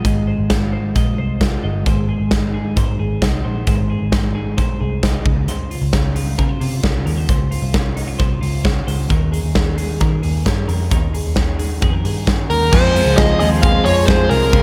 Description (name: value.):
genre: jangly indie pop.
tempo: 132 BPM.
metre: 4/4.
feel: straight.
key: Ab major.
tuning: A4 = 440 Hz.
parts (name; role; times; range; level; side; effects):
twelve-string electric guitar; arpeggios; 0.0-14.6 s; Db3 to Eb5; -26 LUFS; equal; tape echo.
vintage muted picked electric bass; bass; 0.0-14.6 s; G1 to Eb3; -22 LUFS; equal; none.
big rock drum kit; drums; 0.0-14.6 s; crash cymbal, hi-hat, kick drum, snare drum; -20 LUFS; equal; tape echo.
dark smooth lead guitar; melody; 12.5-14.6 s; Bb4 to F5; -18 LUFS; equal; overdrive, tape echo.
electric guitar through a small old amp; accompaniment; 12.7-14.6 s; F2 to Ab4; -24 LUFS; equal; none.
warm studio string section; sustained chords; 12.7-14.6 s; Ab4 to C6; -30 LUFS; equal; none.
room: light reverb.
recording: echo-heavy mix.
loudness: -17 LUFS.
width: mono.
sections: 0.0-12.7 A section; 12.7-14.6 B section.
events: none.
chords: 0.0 Ab6; 1.9 Ab; 5.3 Dbmaj7; 9.1 Eb7sus4; 12.7 Fm.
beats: | 0.04 0.50 0.95 1.41 | 1.86 2.31 2.77 3.22 | 3.67 4.12 4.58 5.03 | 5.48 5.93 6.38 6.84 | 7.29 7.74 8.20 8.65 | 9.10 9.55 10.01 10.46 | 10.92 11.37 11.82 12.28 | 12.73 13.18 13.63 14.08 | 14.53.